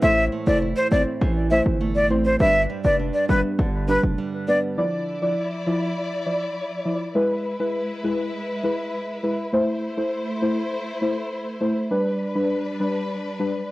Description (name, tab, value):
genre	dancehall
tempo	101 BPM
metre	4/4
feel	straight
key	A minor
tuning	A4 = 440 Hz
part	breathy bright jazz flute	melody	0.0-4.6 s	B4 to E5	-22 LUFS	equal	cassette tape, analog delay
part	deep mellow chord stab	accompaniment	0.0-13.5 s	F3 to D5	-24 LUFS	left 1 dB	chorus, cassette tape
part	nylon-string guitar	arpeggios	0.0-5.3 s	G2 to E4	-28 LUFS	right 4 dB	cassette tape
part	hard-hitting 808-style bass	bass	0.0-4.2 s	F1 to A1	-23 LUFS	equal	none
part	warm studio string section	sustained chords	4.8-13.7 s	F3 to D5	-29 LUFS	equal	cassette tape
room	moderate spring reverb, RT60 1.4 s, small room ambience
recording	home recording on cassette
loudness	-20 LUFS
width	side -18 dB against mid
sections	0.0-4.8 A section; 4.8-13.7 B section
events	none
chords	0.0 Am; 2.4 G; 4.8 Dmadd9; 7.2 E; 9.5 Am; 11.9 G